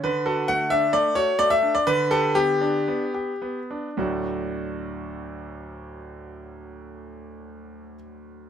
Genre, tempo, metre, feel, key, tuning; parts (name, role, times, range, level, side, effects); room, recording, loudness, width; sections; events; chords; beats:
classical-period piano sonatina; 102-136 BPM; 4/4; rubato; D major; A4 = 444 Hz
clear concert grand piano; solo; 0.0-8.5 s; D2 to F#5; -23 LUFS; equal
light reverb; -21 LUFS; side -8 dB against mid
0.0-4.0 A section; 4.0-8.5 B section
slowing down 0.0-4.0
0.0 D; 1.9 G/D; 4.0 D
| 0.03 0.48 0.93 1.39 | 1.86 2.35 2.87 3.41 | 3.98 4.54 5.11 5.69 | 6.25 6.82 7.38 7.94